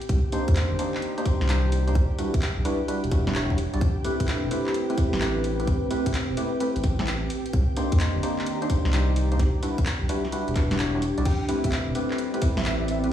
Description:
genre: UK garage, two-step garage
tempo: 129 BPM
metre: 4/4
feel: swing 67% on 16ths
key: A minor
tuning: A4 = 438 Hz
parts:
  - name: ethereal airy pad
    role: sustained chords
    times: 0.0-13.1 s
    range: C4 to G5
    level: -37 LUFS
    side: left 1 dB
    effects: ensemble chorus, built-in reverb, sidechain pumping
  - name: garage drum kit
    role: drums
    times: 0.0-13.1 s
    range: crash cymbal, handclaps, hi-hat, snare drum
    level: -33 LUFS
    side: equal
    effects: none
  - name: deep dark ambient pad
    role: texture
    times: 0.0-13.1 s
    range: Eb3 to Bb5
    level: -32 LUFS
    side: equal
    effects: chorus, built-in reverb, sidechain pumping
  - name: saturated sub bass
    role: bass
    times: 0.1-13.1 s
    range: E1 to F2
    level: -26 LUFS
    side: equal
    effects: none
  - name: electronic kick drum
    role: drums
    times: 0.1-12.5 s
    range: none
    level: -24 LUFS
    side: equal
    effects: none
  - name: percussive organ stab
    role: stabs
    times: 0.3-13.1 s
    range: G3 to D5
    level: -28 LUFS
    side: equal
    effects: lush chorus, tape echo
  - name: breathy bright concert flute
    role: melody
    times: 11.3-13.0 s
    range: E5 to G5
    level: -36 LUFS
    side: right 2 dB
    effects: tape echo
room: light reverb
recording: played on a big sound system in a bare room, stone room reverb, small room ambience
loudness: -22 LUFS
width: side -10 dB against mid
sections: 0.0-13.1 A section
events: kick drops out 10.8-11.3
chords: 0.0 Cm9; 2.0 Em9; 3.8 Am9; 7.3 Cm9; 9.4 Em9; 11.3 Am9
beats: | 0.09 0.56 1.02 1.49 | 1.95 2.42 2.88 3.35 | 3.81 4.28 4.74 5.21 | 5.67 6.14 6.60 7.07 | 7.53 8.00 8.46 8.93 | 9.39 9.86 10.32 10.79 | 11.26 11.72 12.19 12.65 | 13.12

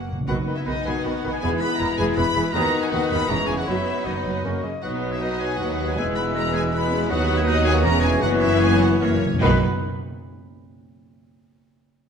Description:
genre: quick classical-period movement for symphony orchestra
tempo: 143-163 BPM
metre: 3/4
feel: rubato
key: B major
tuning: A4 = 442 Hz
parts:
  - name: rich studio violin section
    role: melody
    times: 0.0-9.6 s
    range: B4 to B5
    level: -28 LUFS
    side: left 2 dB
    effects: none
  - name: rich studio viola section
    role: accompaniment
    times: 0.0-9.6 s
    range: C#3 to B3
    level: -28 LUFS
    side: right 1 dB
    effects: none
  - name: bright studio cello section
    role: bass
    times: 0.0-9.6 s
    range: D#2 to B2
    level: -28 LUFS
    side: right 3 dB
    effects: none
  - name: rich studio double bass section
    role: bass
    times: 0.0-9.6 s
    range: E1 to D#2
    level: -27 LUFS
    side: right 3 dB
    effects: none
  - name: timpani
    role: percussion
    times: 0.0-0.3, 8.2-9.6 s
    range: F#2 to B2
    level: -27 LUFS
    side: equal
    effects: none
  - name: clear clarinet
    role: second line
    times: 0.3-9.6 s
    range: G#4 to D#5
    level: -33 LUFS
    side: left 1 dB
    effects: none
  - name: clear oboe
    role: second line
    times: 0.3-9.6 s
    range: C#4 to B4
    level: -33 LUFS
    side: right 1 dB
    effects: none
  - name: rich studio violin section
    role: second line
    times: 0.3-9.6 s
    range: B3 to F#4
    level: -31 LUFS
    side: left 3 dB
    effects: none
  - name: silver concert flute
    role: second line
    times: 0.3-9.6 s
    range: B5 to E6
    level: -32 LUFS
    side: left 2 dB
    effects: none
  - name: warm bassoon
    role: accompaniment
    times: 0.3-9.6 s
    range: D#3 to G#3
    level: -31 LUFS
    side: right 1 dB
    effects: none
  - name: dark French horn section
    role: sustained chords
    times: 0.3-9.6 s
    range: F#3 to E4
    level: -27 LUFS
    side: left 5 dB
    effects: none
room: wet scoring stage reverb, RT60 1.5 s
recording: none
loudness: -19 LUFS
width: side -6 dB against mid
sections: 0.3-9.4 A section; 9.4-10.6 B section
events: timpani fill 0.0, 9.0-9.4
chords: 0.3 B; 1.4 E; 2.5 B/D#; 3.3 C#m/E; 3.7 B/F#; 4.4 F#; 4.8 B; 6.0 E; 7.1 B/D#; 7.8 C#m/E; 8.2 F#7sus4; 9.0 F#7; 9.4 B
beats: | 0.28 0.66 1.04 | 1.42 1.79 2.17 | 2.54 2.91 3.29 | 3.67 4.06 4.44 | 4.83 5.21 5.60 | 5.98 6.36 6.73 | 7.10 7.47 7.85 | 8.23 8.61 9.01 | 9.42

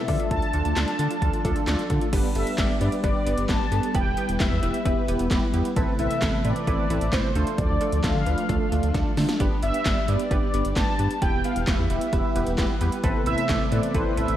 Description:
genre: synth-pop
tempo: 132 BPM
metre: 4/4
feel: straight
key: unclear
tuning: A4 = 442 Hz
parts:
  - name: mellow synth brass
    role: melody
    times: 0.0-14.4 s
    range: C5 to A5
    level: -29 LUFS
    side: equal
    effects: chorus, slapback echo
  - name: funky polysynth comp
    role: accompaniment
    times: 0.0-14.3 s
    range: A3 to D5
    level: -29 LUFS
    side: right 1 dB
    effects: chorus, slapback echo
  - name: ensemble organ-string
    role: sustained chords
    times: 0.0-14.4 s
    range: C3 to E4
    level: -30 LUFS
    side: left 1 dB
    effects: ensemble chorus
  - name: analog pluck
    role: arpeggios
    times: 0.0-2.1 s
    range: A3 to A5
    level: -38 LUFS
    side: left 3 dB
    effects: none
  - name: round analog bass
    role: bass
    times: 0.1-14.4 s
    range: E1 to D3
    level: -26 LUFS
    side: equal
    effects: none
  - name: 80s electronic pad drums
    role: drums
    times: 0.1-14.4 s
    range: crash cymbal, handclaps, hi-hat, kick drum, snare drum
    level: -26 LUFS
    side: equal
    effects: overdrive
room: moderate lush hall reverb, RT60 1.7 s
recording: big arena sound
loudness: -21 LUFS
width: side -12 dB against mid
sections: 0.0-2.1 A section; 2.1-14.4 B section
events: drum fill 8.9-9.4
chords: 0.1 Dm; 2.1 G; 3.9 Em; 5.8 Amadd9; 7.4 Dm; 9.4 G; 11.2 Em; 13.0 Amadd9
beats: | 0.31 0.76 1.22 1.67 | 2.13 2.58 3.04 3.49 | 3.95 4.40 4.86 5.31 | 5.76 6.22 6.67 7.13 | 7.58 8.04 8.49 8.95 | 9.40 9.86 10.31 10.76 | 11.22 11.67 12.13 12.58 | 13.04 13.49 13.95

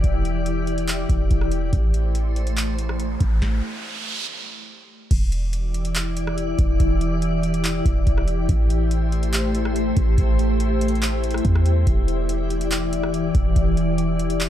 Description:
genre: hip hop, atmospheric cloud-rap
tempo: 142 BPM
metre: 4/4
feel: half-time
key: E minor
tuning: A4 = 440 Hz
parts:
  - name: glassy FM pad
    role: sustained chords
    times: 0.0-14.5 s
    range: E3 to D5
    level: -24 LUFS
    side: left 1 dB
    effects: ensemble chorus, built-in reverb, sidechain pumping
  - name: clean 808-style bass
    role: bass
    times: 0.0-14.5 s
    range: E1 to E2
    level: -22 LUFS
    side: equal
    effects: none
  - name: booming analog drum machine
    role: drums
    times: 0.0-14.5 s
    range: crash cymbal, handclaps, hi-hat, kick drum, rim click, snare drum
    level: -23 LUFS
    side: equal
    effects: none
  - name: riser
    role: sound effects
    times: 2.9-4.3 s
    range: none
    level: -32 LUFS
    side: right 3 dB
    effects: none
room: digital ambience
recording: dry, gritty hardware recording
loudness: -19 LUFS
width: side -11 dB against mid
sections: 0.0-5.1 A section; 5.1-14.5 B section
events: riser 2.9-5.1; stop 3.4-5.1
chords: 0.0 Em7; 1.7 Am7; 5.1 Em7; 8.5 Am7; 11.9 Em7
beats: | 0.04 0.46 0.88 1.31 | 1.73 2.15 2.57 3.00 | 3.42 3.84 4.26 4.69 | 5.11 5.53 5.95 6.38 | 6.80 7.22 7.64 8.07 | 8.49 8.91 9.34 9.76 | 10.18 10.60 11.03 11.45 | 11.87 12.29 12.71 13.14 | 13.56 13.98 14.40

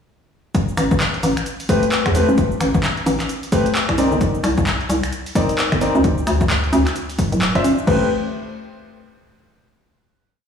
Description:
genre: UK garage, two-step garage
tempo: 131 BPM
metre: 4/4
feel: swing 60% on 16ths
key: A minor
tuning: A4 = 440 Hz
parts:
  - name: electronic kick drum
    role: drums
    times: 0.5-8.0 s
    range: none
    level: -21 LUFS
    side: left 1 dB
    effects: overdrive
  - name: punchy analog drum machine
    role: drums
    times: 0.5-8.0 s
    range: congas, crash cymbal, finger snaps, handclaps, hi-hat, shaker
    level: -22 LUFS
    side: equal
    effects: overdrive
  - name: hollow knocking FM bass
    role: bass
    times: 0.8-8.1 s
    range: D1 to E2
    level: -20 LUFS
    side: equal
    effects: tube saturation
  - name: clear concert grand piano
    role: stabs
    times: 1.7-8.1 s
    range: A3 to E5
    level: -21 LUFS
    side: left 2 dB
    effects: tape echo
room: moderate lush hall reverb, RT60 1.8 s, digital ambience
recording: played on a big sound system in a bare room, large studio reverb, small room ambience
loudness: -16 LUFS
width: side -7 dB against mid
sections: 0.5-7.9 drop; 7.9-9.7 final chord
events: drop 0.5-7.9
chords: 0.5 Am; 4.0 Cm9; 6.0 D5; 7.9 Am9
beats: | 0.55 1.00 1.46 1.92 | 2.38 2.83 3.29 3.75 | 4.21 4.67 5.12 5.58 | 6.04 6.50 6.96 7.42 | 7.87

